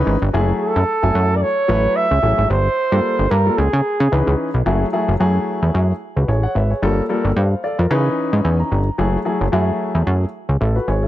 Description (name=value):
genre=early-eighties boogie funk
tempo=111 BPM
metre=4/4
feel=swing 56% on 16ths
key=F# minor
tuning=A4 = 440 Hz
part: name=breathy flugelhorn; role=melody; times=0.0-4.4 s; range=G#4 to E5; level=-20 LUFS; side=right 2 dB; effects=tape echo
part: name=warm grand piano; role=accompaniment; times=0.0-11.1 s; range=E3 to A#5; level=-21 LUFS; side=left 2 dB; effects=none
part: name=plucky analog bass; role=bass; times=0.0-11.1 s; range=F#1 to C#3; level=-16 LUFS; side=equal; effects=none
room=light reverb, small room ambience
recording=none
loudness=-15 LUFS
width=side -14 dB against mid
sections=0.0-4.7 A section; 4.7-11.1 B section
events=grand piano fill 7.4-9.0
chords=0.3 F#m9; 2.5 Gm9; 3.6 C#m9; 4.7 F#m9; 6.8 Gm9; 7.9 C#m9; 9.0 F#m9